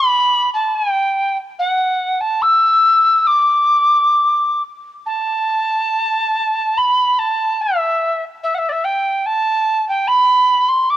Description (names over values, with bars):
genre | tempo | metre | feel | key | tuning
celtic folk | 72 BPM | 4/4 | rubato | D mixolydian | A4 = 440 Hz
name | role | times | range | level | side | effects
mellow tin whistle | solo | 0.0-11.0 s | D5 to E6 | -14 LUFS | equal | none
room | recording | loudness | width
light reverb, small room ambience | home recording on cassette | -14 LUFS | side -12 dB against mid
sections
0.0-5.1 A section; 5.1-11.0 B section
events
none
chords
none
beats
0.74 | 1.57 2.41 3.26 4.16 | 5.07 5.93 6.79 7.62 | 8.45 9.28 10.11 10.92